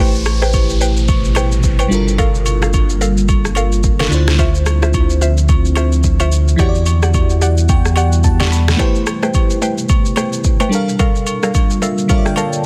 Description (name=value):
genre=amapiano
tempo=109 BPM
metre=4/4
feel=swing 58% on 16ths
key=A minor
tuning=A4 = 440 Hz
part: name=bell-like FM electric piano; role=accompaniment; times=0.0-12.7 s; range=D3 to B5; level=-23 LUFS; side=equal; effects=chorus
part: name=deep dark ambient pad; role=sustained chords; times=0.9-12.7 s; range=B2 to E5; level=-26 LUFS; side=equal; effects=chorus, built-in reverb
part: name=mallet-like synth pluck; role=stabs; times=0.0-12.5 s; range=G3 to G5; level=-25 LUFS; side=equal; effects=chorus, tape echo
part: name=warm sub bass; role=bass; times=0.0-8.8 s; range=G1 to E2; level=-17 LUFS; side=equal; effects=none
part: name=downlifter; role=sound effects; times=0.0-4.4 s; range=none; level=-32 LUFS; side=equal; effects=none
part: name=deep house drum kit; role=drums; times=0.1-12.6 s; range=kick drum, rim click, shaker, snare drum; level=-18 LUFS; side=equal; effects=none
part: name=agogo bells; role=percussion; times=0.3-12.5 s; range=none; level=-29 LUFS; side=equal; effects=none
room=little or no reverb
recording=dense, heavily limited modern master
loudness=-14 LUFS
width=mono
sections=0.0-12.7 A section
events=FM electric piano fill 7.1-8.8, 11.5-12.7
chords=0.0 Am9; 1.9 Gm9; 4.1 Dm9; 6.6 Em9; 8.8 Am9; 10.7 Gm9